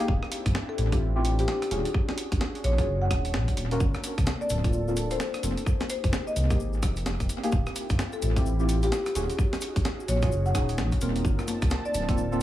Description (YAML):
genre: UK garage, two-step garage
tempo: 129 BPM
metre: 4/4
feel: swing 61% on 16ths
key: unclear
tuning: A4 = 440 Hz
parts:
  - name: marimba with soft mallets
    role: melody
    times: 0.0-12.0 s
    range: G4 to Gb5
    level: -33 LUFS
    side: left 1 dB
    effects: analog delay
  - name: warm analog pad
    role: sustained chords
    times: 0.0-12.4 s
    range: Bb3 to A5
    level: -38 LUFS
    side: equal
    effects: chorus, sidechain pumping
  - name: deep mellow chord stab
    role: stabs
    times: 0.0-12.4 s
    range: Bb3 to Bb4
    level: -32 LUFS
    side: equal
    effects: chorus, analog delay
  - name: dark detuned saw bass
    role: bass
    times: 0.1-12.4 s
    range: D1 to C2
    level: -27 LUFS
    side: equal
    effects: none
  - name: electronic kick drum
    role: drums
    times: 0.1-12.2 s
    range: none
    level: -27 LUFS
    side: equal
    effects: small room ambience
  - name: breakbeat sampler-style drum kit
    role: drums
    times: 0.2-12.2 s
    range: congas, hi-hat, rim click, snare drum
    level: -34 LUFS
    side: equal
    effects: small room ambience, analog delay
  - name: cabasa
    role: percussion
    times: 3.8-12.4 s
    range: none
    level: -43 LUFS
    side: left 6 dB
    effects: none
room: light reverb, digital ambience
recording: echo-heavy mix, small room ambience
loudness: -24 LUFS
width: side -14 dB against mid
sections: 0.0-12.4 A section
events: none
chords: 0.1 Dm11; 1.7 Ebm11; 3.8 Gm11 (rootless); 5.7 Fm11; 7.5 Dm11 (rootless); 9.2 Ebm11; 11.2 Gm11 (rootless)